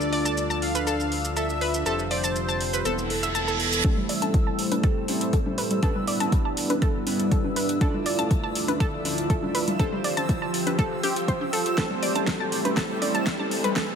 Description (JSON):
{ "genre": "progressive house", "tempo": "121 BPM", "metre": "4/4", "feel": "straight", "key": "A minor", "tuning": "A4 = 440 Hz", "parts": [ { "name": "soft supersaw", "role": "melody", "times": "0.0-3.7 s", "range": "A4 to F5", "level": "-31 LUFS", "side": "left 1 dB", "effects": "digital delay" }, { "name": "evolving wavetable pad", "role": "sustained chords", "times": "0.0-14.0 s", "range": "D2 to E5", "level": "-33 LUFS", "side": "equal", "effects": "phaser, built-in reverb, sidechain pumping" }, { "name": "chorused polysynth", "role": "stabs", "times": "0.0-14.0 s", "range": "G3 to D5", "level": "-29 LUFS", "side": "right 1 dB", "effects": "sidechain pumping, ping-pong delay" }, { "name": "fat analog bass", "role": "bass", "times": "0.0-3.8 s", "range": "E1 to D2", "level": "-32 LUFS", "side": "equal", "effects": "sidechain pumping" }, { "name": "deep house drum kit", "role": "drums", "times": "0.0-13.9 s", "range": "hi-hat, shaker, snare drum", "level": "-31 LUFS", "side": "equal", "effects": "studio reverb" }, { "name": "backwards swelling texture", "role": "texture", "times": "0.0-14.0 s", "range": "E6", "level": "-38 LUFS", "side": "right 1 dB", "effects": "built-in reverb, sidechain pumping" }, { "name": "analog pluck", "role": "arpeggios", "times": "0.1-13.8 s", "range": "G4 to A5", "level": "-30 LUFS", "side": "left 1 dB", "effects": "chorus, sidechain pumping, ping-pong delay" }, { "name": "reverse cymbal and riser", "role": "sound effects", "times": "3.0-14.0 s", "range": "none", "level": "-34 LUFS", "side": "right 3 dB", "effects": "none" }, { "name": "electronic kick drum", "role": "drums", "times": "3.8-13.9 s", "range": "none", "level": "-24 LUFS", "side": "equal", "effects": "overdrive, studio reverb" }, { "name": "congas", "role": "percussion", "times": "3.8-14.0 s", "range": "none", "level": "-32 LUFS", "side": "left 1 dB", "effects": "sidechain pumping on perc, studio reverb" } ], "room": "light reverb, digital ambience", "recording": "high-pass filter", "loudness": "-22 LUFS", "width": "side -7 dB against mid", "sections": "0.0-3.8 A section; 3.8-14.0 B section", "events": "reverse cymbal 3.0-3.8; build-up 3.8-14.0; filter sweep on synth pluck 3.8-14.0; filter sweep on ambient pad 3.8-14.0; filter sweep 3.8-14.0; drum fill 11.8-14.0", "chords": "0.0 Dmadd9; 1.9 Fsus2; 2.9 Esus4; 3.8 Am7; 5.8 G6; 7.8 Dmadd9; 9.8 Fsus2; 11.8 Am7", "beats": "0.37 0.87 1.36 | 1.86 2.36 2.85 3.35 | 3.85 4.34 4.84 5.33 | 5.83 6.32 6.82 7.32 | 7.81 8.31 8.80 9.30 | 9.79 10.29 10.79 11.28 | 11.78 12.27 12.77 13.27 | 13.76" }